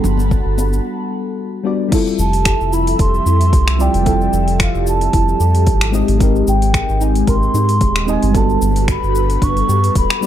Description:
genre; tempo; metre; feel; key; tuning
sunset chillout; 112 BPM; 4/4; swing 55% on 16ths; F lydian; A4 = 440 Hz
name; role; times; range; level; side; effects
mellow FM electric piano; accompaniment; 0.0-10.3 s; G3 to Eb5; -20 LUFS; moving between left 7 dB and right 8 dB; chorus, auto-pan
airy breathy pad; sustained chords; 0.0-10.3 s; F3 to B5; -24 LUFS; equal; chorus, phaser
soft round pluck; arpeggios; 0.0-9.8 s; D4 to Bb4; -26 LUFS; right 1 dB; ensemble chorus, ping-pong delay
round analog bass; bass; 0.0-10.1 s; D1 to Ab2; -16 LUFS; equal; none
deep house drum kit; drums; 0.0-10.3 s; crash cymbal, finger snaps, hi-hat, shaker; -23 LUFS; equal; overdrive
congas; percussion; 0.0-0.7 s; none; -26 LUFS; left 4 dB; none
electronic kick drum; drums; 0.3-10.1 s; none; -18 LUFS; equal; overdrive
mellow hollow baroque flute; melody; 2.2-10.3 s; F5 to Db6; -20 LUFS; equal; vintage 12-bit sampler grit, tape echo
room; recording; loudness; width
little or no reverb; dark, warm production; -13 LUFS; side -11 dB against mid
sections
0.0-1.9 A section; 1.9-10.3 B section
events
break 0.8-1.9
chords
0.0 Gmaj9; 1.9 Fmaj9; 5.9 Abmaj9; 8.3 Gmaj9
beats
0.31 0.85 1.38 | 1.92 2.45 2.99 3.52 | 4.06 4.60 5.13 5.67 | 6.20 6.74 7.28 7.81 | 8.35 8.88 9.42 9.95

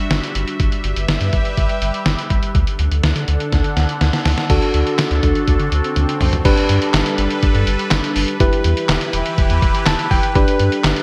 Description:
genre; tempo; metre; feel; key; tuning
synth-pop; 123 BPM; 4/4; straight; G major; A4 = 440 Hz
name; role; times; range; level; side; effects
phased analog pad; sustained chords; 0.0-11.0 s; D3 to F#5; -25 LUFS; equal; phaser, chorus
rubbery square bass; bass; 0.1-10.9 s; E1 to D3; -21 LUFS; equal; none
lo-fi sampler-style drum kit; drums; 0.1-11.0 s; crash cymbal, handclaps, hi-hat, kick drum, snare drum, toms; -20 LUFS; equal; gated reverb
tine electric piano; accompaniment; 4.5-11.0 s; D4 to A5; -23 LUFS; equal; none
swell; sound effects; 5.6-6.5 s; none; -33 LUFS; equal; none
room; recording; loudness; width
moderate plate reverb, RT60 2.3 s; bright 1980s-style digital production; -17 LUFS; mono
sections
0.0-4.5 A section; 4.5-6.5 B section; 6.5-11.0 C section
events
drum fill 3.5-4.5, 6.0-6.5; swell 5.6-6.5; tine electric piano fill 9.6-10.4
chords
0.0 Dadd9/G; 0.6 Em/G; 2.5 D; 6.5 Gadd9; 8.4 Em; 10.4 Gadd9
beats
0.11 | 0.60 1.09 1.57 2.06 | 2.55 3.04 3.52 4.01 | 4.50 4.99 5.48 5.96 | 6.45 6.94 7.43 7.92 | 8.40 8.89 9.38 9.87 | 10.36 10.84

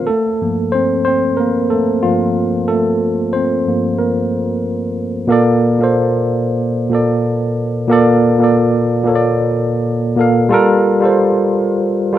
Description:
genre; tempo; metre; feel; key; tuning
R&B; 92 BPM; 4/4; swing 57% on 16ths; unclear; A4 = 445 Hz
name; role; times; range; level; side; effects
tine electric piano; solo; 0.0-12.2 s; G2 to F5; -13 LUFS; equal; medium stereo tremolo
room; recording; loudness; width
moderate lush hall reverb, RT60 2.3 s; rough home demo mix; -13 LUFS; side -12 dB against mid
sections
0.0-5.3 A section; 5.3-12.2 B section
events
tine electric piano solo 0.0-5.3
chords
0.1 Gm9; 5.3 Bbmaj7; 10.5 Gm9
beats
| 0.07 0.72 1.37 2.02 | 2.67 3.33 3.98 4.63 | 5.28 5.93 6.59 7.24 | 7.89 8.54 9.20 9.85 | 10.50 11.15 11.80

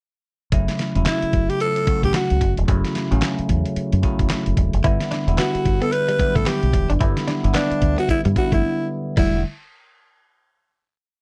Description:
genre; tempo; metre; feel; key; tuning
R&B, new jack swing; 111 BPM; 4/4; swing 60% on 16ths; E dorian; A4 = 440 Hz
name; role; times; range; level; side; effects
bell-like tine electric piano; accompaniment; 0.5-9.4 s; C#3 to F#4; -27 LUFS; equal; phaser
deep dub fingered electric bass; bass; 0.5-9.4 s; E1 to G2; -23 LUFS; equal; none
dusty soul sampler-style drum kit; drums; 0.5-9.3 s; crash cymbal, handclaps, hi-hat, kick drum, snare drum; -25 LUFS; equal; vintage 12-bit sampler grit
growling alto saxophone; melody; 1.1-9.4 s; D4 to B4; -24 LUFS; equal; slapback echo
direct-recorded clean electric guitar; riff; 4.8-9.3 s; G3 to E4; -29 LUFS; equal; lush chorus
room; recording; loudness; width
little or no reverb; dry, close 1970s-style studio recording; -20 LUFS; mono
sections
0.5-9.2 verse; 9.2-11.2 final chord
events
break 8.6-9.2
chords
0.5 F#m7; 4.8 Em7; 9.2 Em11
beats
| 0.52 1.06 1.60 2.14 | 2.68 3.22 3.76 4.30 | 4.85 5.39 5.93 6.47 | 7.01 7.55 8.09 8.63 | 9.17

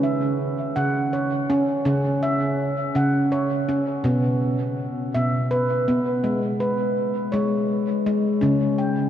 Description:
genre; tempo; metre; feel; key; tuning
world meditative; 55 BPM (dotted quarters); 6/8; straight; C# minor pentatonic; A4 = 442 Hz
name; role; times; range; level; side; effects
handpan; solo; 0.0-9.1 s; B2 to G5; -20 LUFS; equal; diffuse ambient delay
room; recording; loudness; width
wet cathedral reverb, RT60 6.8 s; dreamy mix soaked in reverb; -20 LUFS; side -10 dB against mid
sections
0.0-8.4 A section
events
none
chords
0.0 C#m; 4.1 Bsus4; 6.2 G#m; 8.4 C#5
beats
0.77 | 1.86 2.96 | 4.06 5.15 | 6.25 7.34 | 8.43

